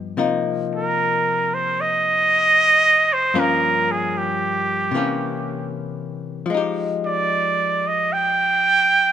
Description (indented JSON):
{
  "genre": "jazz ballad",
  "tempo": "76 BPM",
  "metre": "4/4",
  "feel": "swing 66% on 8ths",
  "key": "C minor",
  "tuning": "A4 = 440 Hz",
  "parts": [
    { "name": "archtop guitar, miked and amplified", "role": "accompaniment", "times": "0.0-9.1 s", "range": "G2 to G4", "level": "-25 LUFS", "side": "left 6 dB", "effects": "none" },
    { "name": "trumpet with straight mute", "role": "melody", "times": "0.8-9.1 s", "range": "G4 to G5", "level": "-17 LUFS", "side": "right 2 dB", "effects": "none" }
  ],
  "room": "moderate plate reverb, RT60 2.5 s",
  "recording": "minimal, uncompressed stereo recording",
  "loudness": "-17 LUFS",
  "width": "side -9 dB against mid",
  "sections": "0.2-9.1 A section",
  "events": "none",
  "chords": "0.2 Cm7; 3.4 Gm7b5; 4.9 C7b9; 6.5 Fm9"
}